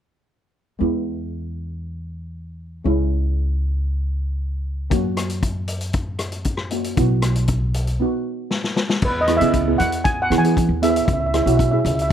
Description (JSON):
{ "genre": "calypso", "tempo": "117 BPM", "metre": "4/4", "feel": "straight", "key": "E major", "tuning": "A4 = 440 Hz", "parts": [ { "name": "steel pan", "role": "accompaniment", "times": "0.8-12.1 s", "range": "G#3 to G#4", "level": "-22 LUFS", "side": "right 2 dB", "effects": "none" }, { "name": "upright bass", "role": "bass", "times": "0.8-12.1 s", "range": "B1 to E3", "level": "-22 LUFS", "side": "equal", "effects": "none" }, { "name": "vintage drum kit", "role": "drums", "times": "4.9-12.1 s", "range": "crash cymbal, hi-hat, kick drum, rim click, snare drum", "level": "-23 LUFS", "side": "left 2 dB", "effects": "none" }, { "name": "steel pan", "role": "melody", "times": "9.0-12.1 s", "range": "B4 to G#5", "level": "-21 LUFS", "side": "right 1 dB", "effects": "none" } ], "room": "little or no reverb", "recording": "close, detailed microphones", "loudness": "-18 LUFS", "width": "side -9 dB against mid", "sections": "0.8-9.0 A section; 9.0-12.1 B section", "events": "break 8.0-9.0; drum fill 8.5-9.0", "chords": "0.8 E; 2.9 C#m; 4.9 F#; 7.0 Bsus4; 8.0 B; 9.0 E; 11.1 C#m" }